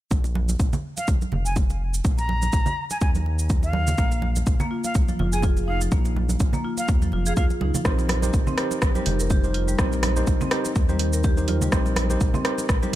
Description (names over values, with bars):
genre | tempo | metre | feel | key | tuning
afro house | 124 BPM | 4/4 | swing 56% on 16ths | unclear | A4 = 441 Hz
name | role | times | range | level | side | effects
round analog bass | bass | 0.1-13.0 s | F1 to Eb2 | -25 LUFS | equal | sidechain pumping
electronic kick drum | drums | 0.1-12.8 s | none | -22 LUFS | equal | none
house drum kit | drums | 0.1-13.0 s | hi-hat, rim click, shaker | -29 LUFS | right 1 dB | none
congas | percussion | 0.1-13.0 s | none | -31 LUFS | right 3 dB | none
jazz flute | melody | 1.0-7.5 s | F5 to Bb5 | -31 LUFS | equal | dub echo
marimba with medium hard mallets | arpeggios | 4.0-13.0 s | F3 to Bb4 | -29 LUFS | left 2 dB | sidechain pumping, dub echo
mellow tine electric piano | stabs | 7.8-13.0 s | Eb4 to C5 | -29 LUFS | right 3 dB | medium stereo tremolo, sidechain pumping, dub echo
room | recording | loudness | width
little or no reverb | none | -20 LUFS | side -14 dB against mid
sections
0.1-13.0 A section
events
none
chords
0.1 Bb5; 7.9 Cm7